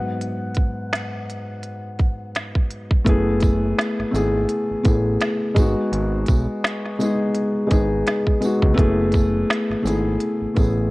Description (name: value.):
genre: lo-fi hip hop.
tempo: 84 BPM.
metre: 4/4.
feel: swing 58% on 16ths.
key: F# dorian.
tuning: A4 = 440 Hz.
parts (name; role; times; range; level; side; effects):
felt-muted upright piano; accompaniment; 0.0-10.9 s; G#2 to F#5; -21 LUFS; left 1 dB; none.
organic electronic drum kit; drums; 0.2-10.8 s; finger snaps, hi-hat, kick drum, snare drum; -20 LUFS; right 1 dB; none.
fat analog bass; bass; 3.1-10.9 s; F#1 to C#2; -23 LUFS; right 1 dB; none.
tambourine; percussion; 3.4-10.8 s; none; -43 LUFS; right 5 dB; none.
room: light reverb, small room ambience.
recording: cassette tape.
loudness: -18 LUFS.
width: side -21 dB against mid.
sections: 0.0-3.1 A section; 3.1-10.9 B section.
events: felt piano solo 0.0-3.1.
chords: 0.0 G#m7; 3.1 F#m11; 5.6 C#7sus4/G# (rootless); 8.8 F#m11.